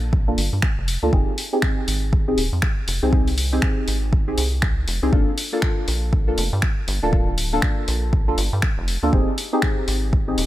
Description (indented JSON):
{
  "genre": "deep house",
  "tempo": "120 BPM",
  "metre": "4/4",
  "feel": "swing 60% on 16ths",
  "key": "G phrygian",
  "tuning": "A4 = 440 Hz",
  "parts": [
    { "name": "deep mellow chord stab", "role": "stabs", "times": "0.0-10.4 s", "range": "Bb3 to A4", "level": "-24 LUFS", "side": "equal", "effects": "chorus, phaser, sidechain pumping, tape echo" },
    { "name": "rubbery square bass", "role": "bass", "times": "0.0-10.5 s", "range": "D1 to G2", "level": "-23 LUFS", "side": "equal", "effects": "sidechain pumping" },
    { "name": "electronic kick drum", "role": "drums", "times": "0.1-10.2 s", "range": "none", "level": "-20 LUFS", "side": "equal", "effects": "none" },
    { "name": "deep house drum kit", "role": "drums", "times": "0.4-10.5 s", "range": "finger snaps, hi-hat", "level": "-27 LUFS", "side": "left 1 dB", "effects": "none" }
  ],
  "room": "little or no reverb",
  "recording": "none",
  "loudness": "-18 LUFS",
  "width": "side -15 dB against mid",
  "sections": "0.0-10.5 A section",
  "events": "none",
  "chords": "0.0 Gm9; 1.1 Fm9 (rootless); 5.1 Gm9; 9.1 Fm9 (rootless)",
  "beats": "0.13 0.63 | 1.13 1.63 2.13 2.63 | 3.13 3.63 4.13 4.63 | 5.13 5.63 6.13 6.63 | 7.13 7.63 8.13 8.63 | 9.13 9.63 10.13"
}